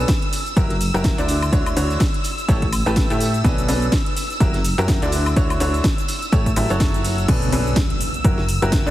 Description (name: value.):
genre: piano house.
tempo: 125 BPM.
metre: 4/4.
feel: swing 57% on 16ths.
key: B minor.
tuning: A4 = 440 Hz.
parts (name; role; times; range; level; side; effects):
string machine, violins; sustained chords; 0.0-8.9 s; E6; -29 LUFS; equal; ensemble chorus, sidechain pumping.
bright upright piano; riff; 0.0-8.9 s; B2 to E5; -24 LUFS; equal; sidechain pumping, digital delay.
plucky analog bass; bass; 0.0-8.9 s; F#1 to A2; -22 LUFS; equal; sidechain pumping.
electronic kick drum; drums; 0.1-8.8 s; none; -20 LUFS; equal; overdrive.
house drum kit; drums; 0.1-8.9 s; crash cymbal, hi-hat, shaker, snare drum, woodblock; -27 LUFS; equal; overdrive.
tambourine; percussion; 0.1-7.3 s; none; -36 LUFS; right 4 dB; none.
impact; sound effects; 7.4-8.9 s; none; -28 LUFS; equal; none.
room: little or no reverb.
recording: heavily compressed radio sound, multiband compression.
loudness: -17 LUFS.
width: side -14 dB against mid.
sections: 0.0-7.3 A section; 7.3-8.9 B section.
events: drop 7.3-8.9; impact 7.3-8.9.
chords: 0.3 F#7b9; 1.3 Dmaj9; 2.2 A7; 3.4 Bm9; 4.2 F#7b9; 5.1 Dmaj9; 6.1 A7; 6.8 F#m7; 7.3 Bm9; 8.0 F#7b9.